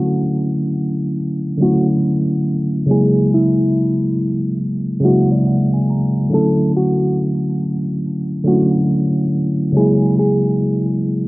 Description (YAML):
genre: hip hop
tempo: 70 BPM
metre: 4/4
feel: swing 64% on 16ths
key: unclear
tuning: A4 = 438 Hz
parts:
  - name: hollow-body jazz guitar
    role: melody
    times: 0.0-11.3 s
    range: E4 to A4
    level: -21 LUFS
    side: equal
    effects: cassette tape
  - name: mellow tine electric piano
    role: accompaniment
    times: 0.0-11.3 s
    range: C#3 to A#5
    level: -15 LUFS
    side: equal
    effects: medium stereo tremolo
room: moderate spring reverb, RT60 2.3 s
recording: home recording on cassette, vinyl crackle, low-pass filter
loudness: -14 LUFS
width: side -21 dB against mid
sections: 0.0-11.3 A section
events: filter sweep 0.0-11.3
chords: 0.0 Dmaj9; 2.9 F#9; 6.3 Dmaj9; 9.7 F#9